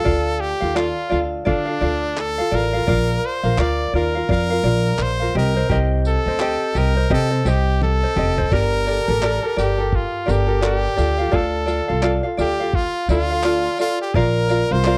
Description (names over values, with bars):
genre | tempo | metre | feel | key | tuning
acoustic pop | 85 BPM | 4/4 | swing 60% on 16ths | G minor | A4 = 440 Hz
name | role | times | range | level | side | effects
brilliant trumpet | melody | 0.0-15.0 s | D4 to D5 | -25 LUFS | equal | slapback echo
tenor ukulele | accompaniment | 0.0-15.0 s | C4 to F5 | -24 LUFS | equal | none
upright bass | bass | 0.1-15.0 s | F1 to D3 | -24 LUFS | equal | none
dusty soul sampler-style drum kit | drums | 0.1-15.0 s | crash cymbal, handclaps, kick drum, snare drum, tambourine, toms | -27 LUFS | equal | none
room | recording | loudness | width
small room ambience | dry, close 1970s-style studio recording | -20 LUFS | mono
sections
0.0-8.5 A section; 8.5-15.0 B section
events
drum fill 7.8-8.5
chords
0.0 Dm; 2.9 Bb; 5.3 Cm; 8.5 Gmadd9; 11.0 Dm; 14.2 Bb